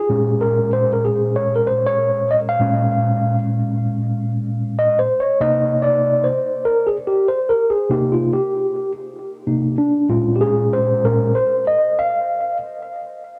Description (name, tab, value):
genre	hip hop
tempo	96 BPM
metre	4/4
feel	swing 62% on 16ths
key	unclear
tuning	A4 = 436 Hz
part	mellow tine electric piano	solo	0.0-12.6 s	Bb2 to F5	-18 LUFS	equal	cassette tape, tape echo
room	moderate studio reverb, RT60 0.6 s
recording	home recording on cassette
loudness	-18 LUFS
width	mono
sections	0.0-13.4 A section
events	tine electric piano solo 0.0-13.4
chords	0.1 Bbm7; 5.4 Cm7; 10.1 Bbm7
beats	| 0.41 1.04 1.66 2.29 | 2.91 3.54 4.16 4.79 | 5.41 6.04 6.66 7.29 | 7.91 8.54 9.16 9.79 | 10.41 11.04 11.66 12.29